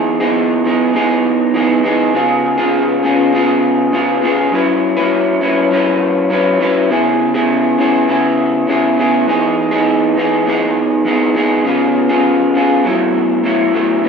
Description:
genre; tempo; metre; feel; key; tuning
indie pop; 101 BPM; 4/4; straight; E major; A4 = 442 Hz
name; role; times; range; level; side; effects
electric guitar through a small old amp; solo; 0.0-14.1 s; F#2 to B4; -12 LUFS; equal; lush chorus, warbly pitch drift, ping-pong delay
room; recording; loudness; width
moderate studio reverb, RT60 0.7 s; rough home demo mix; -12 LUFS; side -6 dB against mid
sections
0.0-14.0 A section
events
none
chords
0.0 Emaj7; 2.1 C#7; 4.5 F#7sus4; 6.9 C#m7; 9.3 Emaj7; 11.7 C#7; 12.8 B7sus4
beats
0.36 0.95 1.55 | 2.14 2.74 3.33 3.92 | 4.52 5.11 5.71 6.30 | 6.90 7.49 8.09 8.68 | 9.28 9.87 10.46 11.06 | 11.65 12.25 12.84 13.44 | 14.03

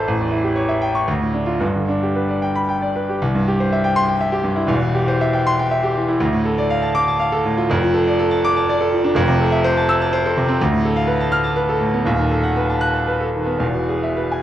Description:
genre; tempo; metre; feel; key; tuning
classical, virtuoso piano study; 107-127 BPM; 3/4; rubato; C major; A4 = 438 Hz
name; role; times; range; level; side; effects
bright concert grand piano; solo; 0.0-14.4 s; D#1 to F#6; -16 LUFS; equal; none
room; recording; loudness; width
moderate scoring stage reverb, RT60 2.0 s; worn, warbling old tape, cassette tape, warbly pitch drift; -16 LUFS; side -12 dB against mid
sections
0.0-3.2 A section; 3.2-14.4 B section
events
none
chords
0.1 A7; 1.1 Dm; 1.6 G; 3.2 C; 4.7 C/E; 6.2 Dm; 7.7 Dm/F; 9.2 Fmaj7; 10.6 Bm7b5/D; 12.1 B7/D#; 13.6 E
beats
| 0.09 0.58 1.08 | 1.60 2.15 2.69 | 3.21 3.71 4.21 | 4.71 5.22 5.72 | 6.22 6.72 7.21 | 7.72 8.21 8.69 | 9.17 9.64 10.12 | 10.60 11.08 11.57 | 12.06 12.57 13.08 | 13.61 14.17

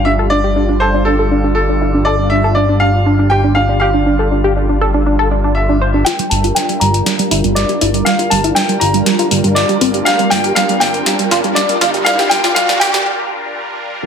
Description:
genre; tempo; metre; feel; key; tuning
progressive house; 120 BPM; 4/4; straight; G minor; A4 = 441 Hz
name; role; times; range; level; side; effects
bright baby grand piano; melody; 0.0-13.0 s; A4 to Bb5; -17 LUFS; left 1 dB; low-pass filter, dub echo
filtered supersaw swell; sustained chords; 0.0-14.0 s; G3 to Bb4; -20 LUFS; equal; phaser, low-pass filter
tight sequenced synth; arpeggios; 0.0-13.0 s; G3 to C5; -17 LUFS; right 2 dB; chorus, dub echo
fat analog bass; bass; 0.0-13.0 s; G1; -17 LUFS; equal; none
deep house drum kit; drums; 6.1-13.0 s; hi-hat, snare drum; -18 LUFS; left 1 dB; high-pass filter on snare, high-pass filter on hats, high-pass filter on room
riser; sound effects; 8.2-13.1 s; none; -24 LUFS; equal; none
room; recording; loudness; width
light reverb, digital ambience; high-pass filter; -11 LUFS; side -7 dB against mid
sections
0.0-6.1 A section; 6.1-14.1 B section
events
filter sweep on synth arpeggio sound 0.0-6.1, 6.1-14.1; filter sweep on supersaw synth 0.0-6.1, 6.1-14.1; build-up 6.1-14.1; drum fill 6.1-13.1; filter sweep on grand piano 6.1-14.1; riser 8.2-13.1; break 13.1-14.1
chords
0.0 Dm/G; 6.1 Gm7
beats
| 0.06 0.56 1.06 1.56 | 2.06 2.56 3.06 3.56 | 4.06 4.56 5.06 5.56 | 6.06 6.56 7.06 7.56 | 8.06 8.56 9.06 9.56 | 10.06 10.56 11.06 11.56 | 12.06 12.56 13.06 13.56

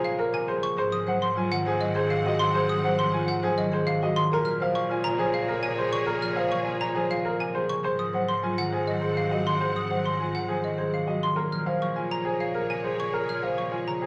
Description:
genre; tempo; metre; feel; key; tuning
classical, minimalist pattern music; 102 BPM; 3/4; straight; Bb minor; A4 = 440 Hz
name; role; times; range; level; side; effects
warm baby grand piano; melody; 0.0-14.1 s; Ab4 to Ab5; -33 LUFS; equal; none
concert harp; accompaniment; 0.0-14.1 s; C3 to Bb3; -34 LUFS; equal; none
rich studio string section; sustained chords; 0.0-14.1 s; C4 to Gb5; -40 LUFS; equal; none
marimba with medium mallets; arpeggios; 0.0-14.1 s; F4 to C5; -32 LUFS; equal; none
xylophone with plastic mallets; arpeggios; 0.0-14.1 s; Eb5 to F6; -33 LUFS; equal; none
clear cello; bass; 0.0-14.1 s; Ab2 to Bb2; -37 LUFS; equal; none
room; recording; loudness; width
wet large studio reverb, RT60 0.8 s; none; -26 LUFS; mono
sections
0.0-14.1 A section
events
none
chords
0.0 Bbm7; 0.8 Ab7; 4.3 Bbm7; 7.8 Ab7; 11.4 Bbm7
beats
0.19 | 0.78 1.37 1.96 | 2.54 3.13 3.72 | 4.31 4.90 5.48 | 6.07 6.66 7.25 | 7.84 8.43 9.01 | 9.60 10.19 10.78 | 11.37 11.96 12.54 | 13.13 13.72

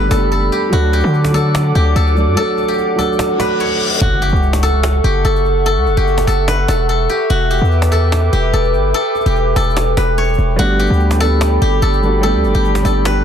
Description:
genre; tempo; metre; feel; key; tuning
hip hop, trap; 146 BPM; 4/4; half-time; F# phrygian; A4 = 440 Hz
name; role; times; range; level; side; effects
steel-string zither; melody; 0.0-13.2 s; F#4 to C#5; -17 LUFS; equal; none
dark concert grand piano; accompaniment; 0.0-4.0, 10.6-13.2 s; F#3 to A4; -19 LUFS; right 2 dB; none
warbly tape-like pad; sustained chords; 0.0-13.2 s; A4 to D6; -22 LUFS; equal; chorus, built-in reverb
hard-hitting 808-style bass; bass; 0.0-13.2 s; E1 to D3; -14 LUFS; equal; none
cajon; drums; 0.1-13.2 s; none; -24 LUFS; equal; none
reverse cymbal and impact; sound effects; 3.4-5.7 s; none; -22 LUFS; left 2 dB; none
room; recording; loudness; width
little or no reverb; dense, heavily limited modern master; -12 LUFS; side -8 dB against mid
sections
0.0-4.0 A section; 4.0-13.2 B section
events
break 2.4-4.0; reverse cymbal 3.4-4.0; impact 4.0-5.7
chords
0.0 Gadd9; 0.7 D; 4.0 F#m7; 7.3 Em7; 10.6 Gadd9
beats
0.31 | 0.72 1.14 1.55 1.96 | 2.37 2.78 3.19 3.60 | 4.01 4.42 4.83 5.25 | 5.66 6.07 6.48 6.89 | 7.30 7.71 8.12 8.53 | 8.95 9.36 9.77 10.18 | 10.59 11.00 11.41 11.82 | 12.23 12.64 13.05

